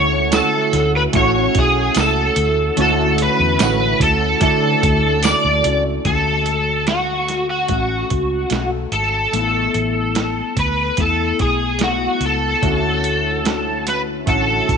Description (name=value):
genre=indie pop, bedroom pop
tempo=73 BPM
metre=4/4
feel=straight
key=D major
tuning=A4 = 438 Hz
part: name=overdriven slide guitar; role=melody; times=0.0-14.8 s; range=F#4 to D5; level=-18 LUFS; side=equal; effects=ensemble chorus, slapback echo
part: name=mellow electric guitar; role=accompaniment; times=0.0-14.8 s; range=D3 to A4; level=-24 LUFS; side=left 13 dB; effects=analog chorus, warbly pitch drift
part: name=warbly lo-fi synth keys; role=accompaniment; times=0.0-6.1, 12.6-14.8 s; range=A3 to A4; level=-23 LUFS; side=right 12 dB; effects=chorus
part: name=vintage muted fingered electric bass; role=bass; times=0.0-14.8 s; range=G#1 to D3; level=-22 LUFS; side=equal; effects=none
part: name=lo-fi sampler-style drum kit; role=drums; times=0.3-14.8 s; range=hi-hat, kick drum, snare drum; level=-22 LUFS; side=right 3 dB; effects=overdrive
part: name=tambourine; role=percussion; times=0.3-5.4 s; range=none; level=-30 LUFS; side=left 15 dB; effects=none
room=light reverb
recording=1960s-style stereo with parts hard left and right, nothing above 10.4 kHz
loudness=-15 LUFS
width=side -6 dB against mid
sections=0.0-6.1 A section; 6.1-14.8 B section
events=none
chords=0.0 Dmaj7; 9.3 Asus2; 12.6 Dmaj7